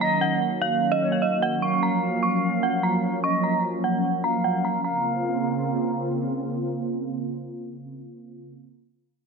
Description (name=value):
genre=hip hop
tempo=149 BPM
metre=4/4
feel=half-time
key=Bb minor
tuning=A4 = 441 Hz
part: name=dark detuned synth bell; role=melody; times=0.0-6.0 s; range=Eb5 to Db6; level=-25 LUFS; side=right 2 dB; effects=chorus, tremolo, low-pass filter, tape echo
part: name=jazz flute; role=second line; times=0.0-6.0 s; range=Db5 to F5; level=-31 LUFS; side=left 4 dB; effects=tape echo
part: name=warm analog pad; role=sustained chords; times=0.0-8.5 s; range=Db3 to F4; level=-25 LUFS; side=right 2 dB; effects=chorus
room=light reverb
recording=dense, heavily limited modern master, low-pass filter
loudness=-22 LUFS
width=side -4 dB against mid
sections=0.0-4.8 A section; 4.8-8.1 B section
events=filter sweep 0.0-4.8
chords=0.0 Ebm7; 1.6 Gbmaj7; 4.8 Bbmadd9